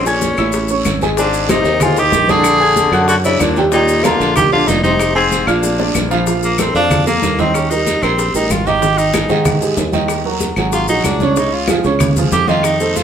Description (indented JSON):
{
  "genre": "Afro-Cuban jazz",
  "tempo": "188 BPM",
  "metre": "4/4",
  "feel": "straight",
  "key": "unclear",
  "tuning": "A4 = 440 Hz",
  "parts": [
    { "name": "clear tenor saxophone", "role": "melody", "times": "0.0-13.0 s", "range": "Bb3 to Ab4", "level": "-16 LUFS", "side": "equal", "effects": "none" },
    { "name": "breathy baritone saxophone", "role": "second line", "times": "0.0-6.0 s", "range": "Ab2 to Eb3", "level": "-18 LUFS", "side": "left 4 dB", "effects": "none" },
    { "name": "sustaining fretless electric bass", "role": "bass", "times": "0.0-13.0 s", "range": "F1 to Ab2", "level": "-20 LUFS", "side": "equal", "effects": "none" },
    { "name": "warm upright piano", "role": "accompaniment", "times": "0.1-13.0 s", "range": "Db3 to Ab6", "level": "-18 LUFS", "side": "right 2 dB", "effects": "none" },
    { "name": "bongos", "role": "percussion", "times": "0.1-13.0 s", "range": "none", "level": "-25 LUFS", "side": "left 4 dB", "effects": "none" },
    { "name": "congas", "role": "percussion", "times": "0.1-13.0 s", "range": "none", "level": "-21 LUFS", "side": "equal", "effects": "none" },
    { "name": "maracas", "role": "percussion", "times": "0.1-13.0 s", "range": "none", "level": "-28 LUFS", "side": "left 6 dB", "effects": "none" },
    { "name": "guiro", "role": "percussion", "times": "0.2-13.0 s", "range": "none", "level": "-27 LUFS", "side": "right 4 dB", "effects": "none" },
    { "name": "claves", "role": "percussion", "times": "0.4-12.8 s", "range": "none", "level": "-27 LUFS", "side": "left 4 dB", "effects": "none" }
  ],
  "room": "wet studio reverb, RT60 0.8 s",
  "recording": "band playing live in one room",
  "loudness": "-12 LUFS",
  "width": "side -8 dB against mid",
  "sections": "0.0-6.3 A section; 6.3-13.0 B section",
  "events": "drum fill 5.6-6.3; tenor saxophone solo 6.3-13.0",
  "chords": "0.0 Bbm7; 0.5 A; 1.2 Ab; 2.5 Bbaug7; 3.7 Ebmaj9; 5.0 Fm; 5.6 Bb; 6.3 Bbmaj7; 7.5 Eb6; 8.8 Ab5; 10.1 Ebm; 10.7 Absus2; 11.4 Dbadd9"
}